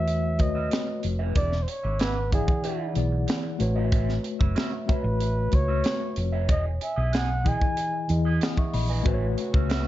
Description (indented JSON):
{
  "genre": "lush 1970s-style soul",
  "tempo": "94 BPM",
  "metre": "4/4",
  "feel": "straight",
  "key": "E major",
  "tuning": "A4 = 436 Hz",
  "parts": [
    { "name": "breathy flugelhorn", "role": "melody", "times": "0.0-8.1 s", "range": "G#4 to G#5", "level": "-30 LUFS", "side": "equal", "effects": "none" },
    { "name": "mellow tine electric piano", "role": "accompaniment", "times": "0.0-9.9 s", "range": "E3 to D#6", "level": "-30 LUFS", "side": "left 4 dB", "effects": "medium stereo tremolo, tube saturation" },
    { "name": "hollow-body short-scale fingered electric bass", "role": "bass", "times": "0.0-9.9 s", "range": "E1 to E2", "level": "-26 LUFS", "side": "equal", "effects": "none" },
    { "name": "vibraphone with medium hard mallets", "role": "texture", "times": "0.0-9.9 s", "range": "C#5 to G#5", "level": "-41 LUFS", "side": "right 1 dB", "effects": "none" },
    { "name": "electric guitar through a small old amp", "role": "riff", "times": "0.1-9.9 s", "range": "B3 to E5", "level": "-37 LUFS", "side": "right 7 dB", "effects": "wah" },
    { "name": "tight funk drum kit", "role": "drums", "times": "0.1-9.9 s", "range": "hi-hat, kick drum, snare drum", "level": "-26 LUFS", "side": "equal", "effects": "none" },
    { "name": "warm studio string section", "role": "sustained chords", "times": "9.1-9.9 s", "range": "C#3 to F#4", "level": "-42 LUFS", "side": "left 3 dB", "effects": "none" }
  ],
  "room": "small room ambience",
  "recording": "dark, warm production, nothing above 7.6 kHz",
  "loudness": "-23 LUFS",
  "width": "side -14 dB against mid",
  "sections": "0.0-9.9 A section",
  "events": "none",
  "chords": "0.0 A69; 1.4 E7; 3.6 A69; 6.5 Emaj7; 9.1 A69"
}